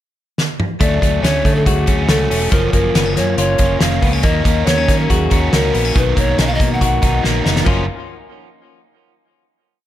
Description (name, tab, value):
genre	jangly indie pop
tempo	140 BPM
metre	4/4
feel	straight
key	F# major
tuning	A4 = 440 Hz
part	loose indie drum kit	drums	0.4-7.8 s	crash cymbal, hi-hat, kick drum, snare drum, toms	-17 LUFS	equal	none
part	mellow hollow pan flute	melody	0.8-7.2 s	G#4 to F#5	-20 LUFS	equal	plate reverb, ping-pong delay
part	overdriven semi-hollow guitar	accompaniment	0.8-7.8 s	F#2 to A#4	-23 LUFS	right 7 dB	spring reverb, plate reverb
part	direct-recorded clean electric guitar	arpeggios	0.8-7.8 s	D#3 to F#4	-21 LUFS	left 7 dB	spring reverb, plate reverb, ping-pong delay
part	fingered electric bass	bass	0.8-7.9 s	E1 to D#3	-19 LUFS	equal	none
room	light reverb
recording	none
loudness	-13 LUFS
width	side -12 dB against mid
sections	0.0-0.8 pickup bar; 0.8-7.7 verse; 7.7-9.4 final chord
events	drum fill 0.4-0.8, 7.2-7.7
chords	0.0 N.C.; 0.8 Dmaj7; 2.5 F#maj7; 4.2 D#m7; 6.0 Bmaj7; 7.7 F#maj7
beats	0.38 | 0.81 1.24 1.66 2.09 | 2.52 2.95 3.38 3.81 | 4.24 4.67 5.10 5.53 | 5.96 6.38 6.81 7.24 | 7.67